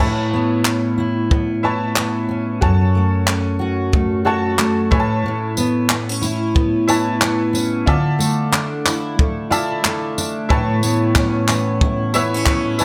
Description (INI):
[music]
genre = acoustic pop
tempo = 91 BPM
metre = 4/4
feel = swing 60% on 16ths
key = A major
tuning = A4 = 441 Hz
[part]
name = bright upright piano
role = accompaniment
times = 0.0-12.8 s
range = E4 to A5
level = -26 LUFS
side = equal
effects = none
[part]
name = fingerpicked steel-string acoustic guitar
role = accompaniment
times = 0.0-12.8 s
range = F#2 to F#4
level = -20 LUFS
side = equal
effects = double-tracked
[part]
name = compact cocktail drum kit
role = drums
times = 0.0-12.8 s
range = crash cymbal, handclaps, kick drum, tambourine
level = -21 LUFS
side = equal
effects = none
[part]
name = dark brass ensemble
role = sustained chords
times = 10.5-12.8 s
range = E3 to C#5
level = -29 LUFS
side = equal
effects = none
[sound]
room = moderate studio reverb, RT60 0.7 s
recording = none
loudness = -18 LUFS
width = mono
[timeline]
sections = 0.0-10.5 A section; 10.5-12.8 B section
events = none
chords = 0.0 Aadd9; 2.6 F#m; 4.9 Aadd9; 7.9 Dmadd9; 10.5 Aadd9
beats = 0.65 1.30 1.96 | 2.62 3.28 3.93 4.59 | 5.25 5.91 6.56 7.22 | 7.88 8.53 9.19 9.85 | 10.50 11.16 11.81 12.47